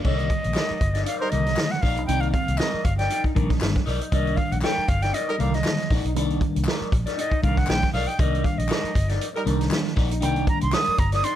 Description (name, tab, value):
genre	funk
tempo	118 BPM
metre	4/4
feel	swing 56% on 16ths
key	C minor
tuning	A4 = 440 Hz
part	breathy bright jazz flute	melody	0.0-11.4 s	C5 to Eb6	-27 LUFS	right 1 dB	none
part	electric guitar at the edge of break-up	accompaniment	0.0-11.4 s	Eb4 to D5	-31 LUFS	left 4 dB	phaser
part	mellow tine electric piano	stabs	0.0-10.8 s	D3 to D4	-28 LUFS	right 1 dB	medium stereo tremolo
part	vintage drum kit	drums	0.0-11.4 s	crash cymbal, hi-hat, kick drum, snare drum	-25 LUFS	equal	none
part	vintage muted fingered electric bass	bass	0.1-11.2 s	G1 to C2	-25 LUFS	equal	none
part	group handclap	percussion	0.5-10.9 s	none	-36 LUFS	left 4 dB	none
part	warm horn section	second line	1.2-1.3, 5.3-5.4, 9.4 s	G3 to Bb4	-30 LUFS	right 2 dB	none
room	light reverb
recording	dark, warm production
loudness	-20 LUFS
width	side -11 dB against mid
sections	0.0-11.4 A section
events	flute solo 0.0-11.4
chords	0.0 Cm9